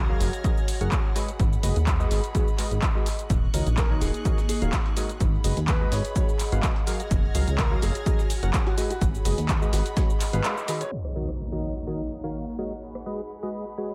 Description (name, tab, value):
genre	piano house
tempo	126 BPM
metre	4/4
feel	swing 54% on 16ths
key	G# dorian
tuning	A4 = 441 Hz
part	dark studio violin section	sustained chords	0.0-13.9 s	D#4 to A#6	-43 LUFS	equal	sidechain pumping
part	plucky analog bass	bass	0.0-10.4 s	D#1 to D#2	-28 LUFS	equal	sidechain pumping
part	airy breathy pad	texture	0.0-13.9 s	A#3 to G#5	-40 LUFS	equal	chorus, sidechain pumping
part	percussive organ stab	riff	0.1-13.9 s	D#3 to F#5	-36 LUFS	equal	analog chorus, sidechain pumping, dub echo
part	punchy analog drum machine	drums	0.2-13.9 s	crash cymbal, handclaps, hi-hat, rim click, shaker	-35 LUFS	equal	low-pass filter on hats, low-pass filter on perc, low-pass filter on snare, low-pass filter on cymbals, low-pass filter on room, dub echo
part	electronic kick drum	drums	0.4-10.1 s	none	-27 LUFS	equal	none
part	dusty soul sampler-style drum kit	drums	3.3-10.8 s	hi-hat, shaker, snare drum	-44 LUFS	equal	none
part	clear concert grand piano	melody	3.8-10.9 s	F#4 to C#5	-38 LUFS	equal	dub echo
part	impact	sound effects	10.9-12.8 s	none	-37 LUFS	equal	none
room	light reverb, digital ambience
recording	echo-heavy mix, low-pass filter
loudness	-25 LUFS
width	mono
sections	0.0-10.9 A section; 10.9-13.9 B section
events	break 10.4-10.9; band accent 10.4; impact 10.9-12.8; filter sweep on drum 10.9-13.9; filter sweep 10.9-13.9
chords	0.0 F#maj9; 1.2 G#m7; 3.3 D#m7; 5.2 G#m7; 6.9 F#maj9; 8.8 G#m7; 10.9 D#m7; 12.8 G#m7